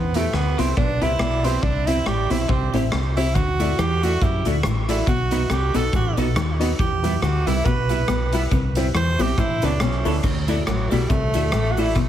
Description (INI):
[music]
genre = ska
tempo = 140 BPM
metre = 4/4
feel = swing 57% on 8ths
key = D mixolydian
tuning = A4 = 440 Hz
[part]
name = bright tenor saxophone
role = melody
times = 0.0-12.0 s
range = F#3 to C5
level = -25 LUFS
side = right 3 dB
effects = tape echo, plate reverb
[part]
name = clean electric guitar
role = riff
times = 0.0-12.1 s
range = A2 to F#3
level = -28 LUFS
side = left 6 dB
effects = none
[part]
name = deep dub fingered electric bass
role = bass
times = 0.0-12.1 s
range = A1 to F#2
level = -23 LUFS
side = equal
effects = none
[part]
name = raw garage drum kit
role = drums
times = 0.1-12.1 s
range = crash cymbal, hi-hat, kick drum, rim click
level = -25 LUFS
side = equal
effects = tape echo
[part]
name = clean electric guitar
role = accompaniment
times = 0.2-11.9 s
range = G3 to A4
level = -29 LUFS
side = right 3 dB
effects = analog chorus, tape echo
[part]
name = warm upright piano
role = stabs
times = 0.2-11.9 s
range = D#4 to E5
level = -28 LUFS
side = left 5 dB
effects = none
[part]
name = cabasa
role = percussion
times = 3.4-12.1 s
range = none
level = -44 LUFS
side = right 8 dB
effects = none
[sound]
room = moderate studio ambience, RT60 0.5 s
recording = heavily compressed radio sound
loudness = -18 LUFS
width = side -11 dB against mid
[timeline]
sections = 0.0-10.2 A section; 10.2-12.1 A section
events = tenor saxophone solo 0.0-10.2, 10.2-12.1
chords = 0.0 Em; 1.6 C; 3.4 Dadd9; 5.1 B; 6.8 Em; 8.5 C; 9.4 Aadd9; 10.2 Dadd9